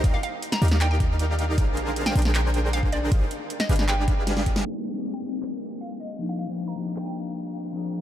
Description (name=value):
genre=future bass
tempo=156 BPM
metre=4/4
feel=half-time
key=unclear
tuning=A4 = 442 Hz
part: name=dense compressed supersaw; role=riff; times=0.0-4.6 s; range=D4 to G5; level=-30 LUFS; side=right 1 dB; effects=sidechain pumping, analog delay
part: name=warm 808-style bass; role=bass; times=0.0-4.6 s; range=G1 to Eb2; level=-24 LUFS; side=equal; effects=sidechain pumping
part: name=dubstep drum kit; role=drums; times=0.0-7.0 s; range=crash cymbal, handclaps, hi-hat, snare drum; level=-31 LUFS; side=equal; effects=studio reverb
part: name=electronic kick drum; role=drums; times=0.0-4.5 s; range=none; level=-23 LUFS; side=equal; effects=studio reverb
part: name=hollow square pluck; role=melody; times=0.1-7.1 s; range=D5 to Bb5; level=-34 LUFS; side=right 1 dB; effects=chorus, sidechain pumping, analog delay
part: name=clean electric guitar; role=accompaniment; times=4.6-8.0 s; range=F3 to D5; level=-30 LUFS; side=left 3 dB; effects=lush chorus, sidechain pumping, analog delay
room=moderate huge ambient reverb, RT60 8.8 s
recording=dreamy mix soaked in reverb, low-pass filter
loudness=-22 LUFS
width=side -12 dB against mid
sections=0.0-4.7 A section; 4.7-8.0 B section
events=drop 0.0-4.7; drum fill 4.3-4.7; band accent 4.6; filter sweep 4.7-8.0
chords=0.0 Ebmaj9; 1.6 Bb9; 3.1 Fm9/Ab; 3.9 G7b9; 4.7 Cm7; 6.2 Ebmaj9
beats=| 0.04 0.42 0.81 1.19 | 1.58 1.96 2.35 2.73 | 3.12 3.50 3.89 4.27 | 4.66 5.04 5.42 5.81 | 6.19 6.58 6.96 7.35 | 7.73